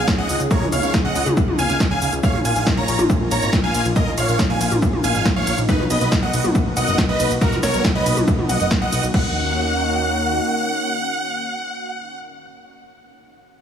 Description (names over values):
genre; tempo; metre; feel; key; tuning
uplifting trance; 139 BPM; 4/4; straight; Eb minor; A4 = 440 Hz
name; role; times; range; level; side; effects
big supersaw lead; melody; 0.0-12.2 s; D#4 to Bb5; -23 LUFS; right 1 dB; phaser, sidechain pumping, digital delay
bright grand piano; second line; 0.0-12.2 s; A#4 to Bb5; -29 LUFS; right 1 dB; sidechain pumping, digital delay
lush unison pad; sustained chords; 0.0-12.2 s; D#3 to Ab4; -26 LUFS; equal; chorus, vintage 12-bit sampler grit, sidechain pumping
fat analog bass; bass; 0.0-10.4 s; F#1 to Eb2; -23 LUFS; equal; sidechain pumping
big-room dance drum kit; drums; 0.1-9.2 s; crash cymbal, hi-hat, ride cymbal, shaker, snare drum, toms; -24 LUFS; equal; overdrive
electronic kick drum; drums; 0.1-9.2 s; none; -21 LUFS; equal; overdrive
room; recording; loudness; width
little or no reverb; small room ambience; -16 LUFS; side -8 dB against mid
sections
0.0-9.1 A section; 9.1-12.6 B section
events
drop 0.0-9.1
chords
0.0 Dbsus2; 2.2 Bbsus4; 5.7 Bmaj7; 9.1 Ebm7